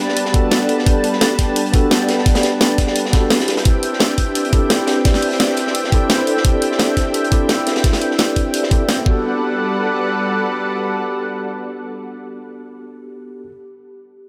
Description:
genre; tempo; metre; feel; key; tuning
liquid drum and bass; 172 BPM; 4/4; straight; G major; A4 = 440 Hz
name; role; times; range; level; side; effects
tine electric piano; accompaniment; 0.0-13.5 s; B3 to D5; -25 LUFS; equal; low-pass filter, delay
lush unison pad; sustained chords; 0.0-12.8 s; G3 to A5; -25 LUFS; equal; chorus
vibraphone with hard mallets; arpeggios; 0.0-9.4 s; D4 to G5; -26 LUFS; equal; low-pass filter, delay
crunchy breakbeat drum kit; drums; 0.0-9.0 s; hi-hat, snare drum; -27 LUFS; equal; high-pass filter on hats, high-pass filter on snare, high-pass filter on room
drum and bass drum kit; drums; 0.2-9.0 s; hi-hat, snare drum; -22 LUFS; equal; none
electronic kick drum; drums; 0.3-9.1 s; none; -18 LUFS; equal; none
room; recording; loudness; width
moderate huge ambient reverb, RT60 4.2 s; none; -17 LUFS; mono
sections
0.0-9.2 A section; 9.2-12.0 B section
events
filter sweep on vibraphone 0.0-9.2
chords
0.0 Gmaj9; 3.5 D7sus4; 9.1 Gmaj9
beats
0.17 0.52 | 0.86 1.21 1.56 1.91 | 2.26 2.61 2.96 3.31 | 3.65 4.00 4.35 4.70 | 5.05 5.40 5.75 6.10 | 6.45 6.79 7.14 7.49 | 7.84 8.19 8.54 8.89 | 9.24 9.59 9.93 10.28 | 10.63 10.98 11.33 11.68

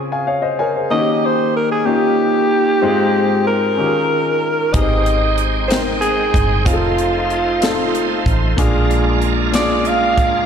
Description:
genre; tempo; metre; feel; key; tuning
slow gospel; 62 BPM (dotted quarters); 6/8; straight; Ab major; A4 = 441 Hz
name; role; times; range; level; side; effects
warm grand piano; accompaniment; 0.0-10.5 s; Ab2 to Ab5; -18 LUFS; left 3 dB; none
raspy alto saxophone; melody; 0.9-10.5 s; F4 to F5; -18 LUFS; right 2 dB; diffuse ambient delay
deep dub fingered electric bass; bass; 4.7-10.5 s; F1 to D2; -20 LUFS; right 1 dB; none
crisp fusion drum kit; drums; 4.7-10.3 s; hi-hat, kick drum, snare drum; -20 LUFS; equal; none
bright tonewheel organ; sustained chords; 4.8-10.5 s; Ab3 to G5; -22 LUFS; right 4 dB; slow rotary speaker, overdrive, chorus vibrato
room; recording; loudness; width
wet lush hall reverb, RT60 2.7 s; dreamy mix soaked in reverb; -14 LUFS; side -7 dB against mid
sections
0.0-10.5 A section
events
grand piano fill 0.0-0.9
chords
0.0 Dbmaj7; 0.9 Eb7; 2.8 Ab6; 3.8 Eb9sus4; 4.7 Abmaj7; 6.7 F7; 8.6 Bb7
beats
| 0.91 1.87 | 2.83 3.78 | 4.74 5.70 | 6.66 7.62 | 8.58 9.54

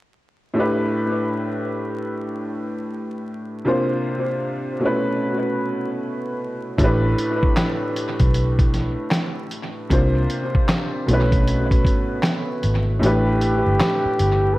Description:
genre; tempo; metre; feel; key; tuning
lo-fi hip hop; 77 BPM; 4/4; swing 63% on 16ths; unclear; A4 = 440 Hz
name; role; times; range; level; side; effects
clear upright piano; accompaniment; 0.5-14.6 s; A2 to C5; -22 LUFS; equal; cassette tape, low-pass filter, tape echo
vintage muted fingered electric bass; bass; 6.8-14.5 s; G1 to C2; -20 LUFS; equal; none
lo-fi sampler-style drum kit; drums; 6.8-14.4 s; handclaps, hi-hat, kick drum, snare drum; -21 LUFS; equal; tape echo
breathy flugelhorn; melody; 13.0-14.6 s; G4 to B4; -21 LUFS; equal; low-pass filter, tape echo
room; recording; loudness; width
light reverb; echo-heavy mix, vinyl crackle; -18 LUFS; side -18 dB against mid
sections
0.6-13.0 A section; 13.0-14.6 B section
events
kick muted 13.0-14.6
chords
0.6 A9sus4; 3.7 C9sus4; 4.8 B9sus4; 6.8 A9sus4; 9.9 C9sus4; 11.1 B9sus4; 13.0 A9sus4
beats
| 0.55 1.33 2.11 2.89 | 3.67 4.45 5.23 6.01 | 6.79 7.57 8.34 9.12 | 9.90 10.68 11.46 12.24 | 13.02 13.80 14.58

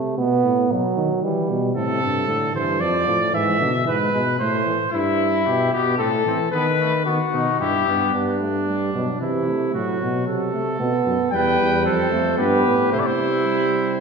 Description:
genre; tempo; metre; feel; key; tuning
classical, imitative canzona for brass ensemble; 113 BPM; 3/4; straight; A minor; A4 = 440 Hz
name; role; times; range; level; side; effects
warm trombone; accompaniment; 0.0-4.8, 8.1-14.0 s; C3 to B3; -23 LUFS; right 3 dB; none
warm bass trombone; bass; 0.0-14.0 s; E2 to E3; -24 LUFS; equal; none
clear trumpet; second line; 1.8-14.0 s; A3 to E5; -24 LUFS; right 3 dB; none
warm trumpet; melody; 4.9-8.1, 11.3-14.0 s; E4 to G5; -21 LUFS; left 5 dB; none
room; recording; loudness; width
wet recital hall reverb, RT60 1.6 s; heard from further back in the room, nothing above 10.5 kHz; -18 LUFS; side -5 dB against mid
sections
0.0-8.1 A section; 8.1-14.0 B section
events
none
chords
0.2 B5; 1.2 Em; 1.8 Am; 2.8 Dm/F; 3.3 E/G#; 4.4 Am; 4.9 Em/G; 6.0 Am; 6.5 B/D#; 7.6 Em/G; 8.1 G; 9.2 C; 9.7 F#dim/A; 10.8 B5; 11.3 Em; 11.9 F; 12.4 G; 12.9 C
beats
| 0.17 0.70 1.23 | 1.76 2.29 2.81 | 3.34 3.87 4.40 | 4.93 5.46 5.99 | 6.53 7.07 7.60 | 8.14 8.68 9.21 | 9.74 10.27 10.80 | 11.33 11.86 12.39 | 12.93 13.47

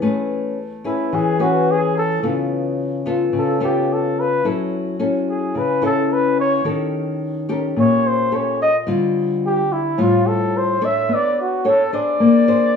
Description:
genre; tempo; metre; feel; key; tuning
bossa nova; 108 BPM; 4/4; straight; unclear; A4 = 441 Hz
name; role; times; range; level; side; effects
nylon-string guitar; accompaniment; 0.0-12.8 s; A2 to C#5; -18 LUFS; left 3 dB; none
warm flugelhorn; melody; 0.9-12.8 s; E4 to E5; -19 LUFS; equal; none
room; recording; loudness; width
light reverb; small room ambience; -16 LUFS; side -6 dB against mid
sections
0.0-12.8 A section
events
flugelhorn solo 0.0-12.8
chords
0.0 Amaj9; 2.2 C#aug7; 4.4 F#m7; 6.7 D#7#11; 8.9 Dm7; 11.1 Bm9; 12.2 Bb9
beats
| 0.02 0.57 1.13 1.68 | 2.23 2.79 3.34 3.90 | 4.45 5.00 5.56 6.11 | 6.66 7.22 7.77 8.32 | 8.88 9.43 9.99 10.54 | 11.09 11.65 12.20 12.75

